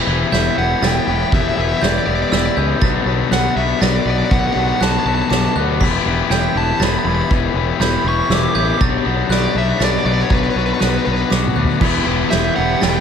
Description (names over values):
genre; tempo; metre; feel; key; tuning
post-rock; 120 BPM; 3/4; straight; E minor; A4 = 442 Hz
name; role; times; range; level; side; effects
glockenspiel with hard plastic mallets; arpeggios; 0.0-13.0 s; D6 to B6; -26 LUFS; right 11 dB; digital delay
crunchy overdriven guitar; riff; 0.0-13.0 s; B2 to B4; -20 LUFS; left 10 dB; none
fuzz fingered electric bass; bass; 0.1-13.0 s; E1 to D2; -20 LUFS; right 1 dB; overdrive
crunchy overdriven guitar; melody; 0.3-13.0 s; B4 to D6; -22 LUFS; right 3 dB; digital delay
soft-mallet drum kit; drums; 0.3-12.9 s; crash cymbal, kick drum, ride cymbal, snare drum, toms; -20 LUFS; equal; none
sludgy distorted guitar; riff; 11.8-13.0 s; E3 to G4; -22 LUFS; right 14 dB; overdrive
room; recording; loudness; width
light reverb, small room ambience; none; -14 LUFS; side -7 dB against mid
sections
0.0-13.0 A section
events
drum fill 11.3-11.8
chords
0.0 Em7; 2.8 Bm7; 5.8 Em; 8.8 Bm7; 11.8 Em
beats
0.33 0.82 | 1.32 1.82 2.32 | 2.82 3.32 3.82 | 4.32 4.82 5.32 | 5.81 6.31 6.81 | 7.31 7.81 8.31 | 8.81 9.31 9.81 | 10.31 10.81 11.32 | 11.82 12.32 12.82